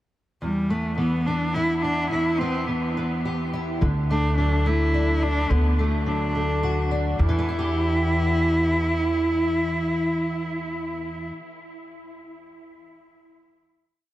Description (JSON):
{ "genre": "indie folk with a building arrangement", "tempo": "107 BPM", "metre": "3/4", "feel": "straight", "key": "E minor", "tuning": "A4 = 440 Hz", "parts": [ { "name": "warm cello", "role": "melody", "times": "0.4-11.3 s", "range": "G3 to E4", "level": "-25 LUFS", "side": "equal", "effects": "diffuse ambient delay" }, { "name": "fingerpicked steel-string acoustic guitar", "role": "accompaniment", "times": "0.4-11.7 s", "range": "E2 to G4", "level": "-27 LUFS", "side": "equal", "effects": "lush chorus" }, { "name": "upright bass", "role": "bass", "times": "3.8-11.3 s", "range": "D2 to E2", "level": "-24 LUFS", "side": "equal", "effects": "none" } ], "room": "moderate huge ambient reverb, RT60 8.9 s", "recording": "dreamy mix soaked in reverb", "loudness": "-21 LUFS", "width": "side -14 dB against mid", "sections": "0.4-7.2 verse; 7.2-10.6 final chord", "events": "none", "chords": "0.4 Em; 3.8 D; 7.2 Em" }